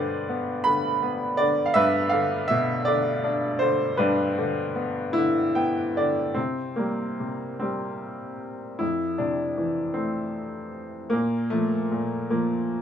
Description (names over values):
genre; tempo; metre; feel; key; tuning
classical, lyrical solo piano; 48-55 BPM (dotted quarters); 6/8; rubato; C mixolydian from 6.4 s; A4 = 440 Hz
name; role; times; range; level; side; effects
bright baby grand piano; solo; 0.0-12.8 s; F2 to B5; -23 LUFS; equal; none
room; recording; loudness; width
light reverb; none; -22 LUFS; side -8 dB against mid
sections
0.0-6.4 A section; 6.4-12.8 B section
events
grand piano fill 5.1-6.4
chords
0.0 G; 6.4 C5; 8.8 Fmaj7; 11.1 Bb5